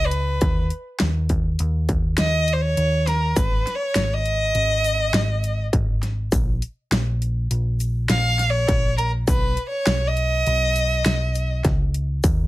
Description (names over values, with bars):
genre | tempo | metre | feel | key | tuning
progressive instrumental, band music in an uneven meter | 102 BPM | 5/4 | straight | unclear | A4 = 443 Hz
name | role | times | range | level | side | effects
rich violin | melody | 0.0-11.6 s | A#4 to E#5 | -23 LUFS | right 1 dB | none
hollow-body short-scale picked electric bass | bass | 0.0-12.5 s | G#1 to D#2 | -22 LUFS | equal | none
dubstep drum kit | drums | 0.1-12.4 s | hi-hat, kick drum, snare drum | -22 LUFS | equal | distortion
egg shaker | percussion | 3.4-12.5 s | none | -37 LUFS | left 5 dB | none
room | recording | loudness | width
light reverb | none | -19 LUFS | side -17 dB against mid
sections
0.0-12.5 A section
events
violin solo 0.0-12.5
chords
0.4 D#5; 3.4 G#5; 6.3 N.C.; 9.3 Badd9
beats
| 0.42 1.01 1.60 2.19 2.78 | 3.37 3.96 4.55 5.14 5.73 | 6.32 6.91 7.51 8.10 8.69 | 9.28 9.87 10.46 11.05 11.65 | 12.24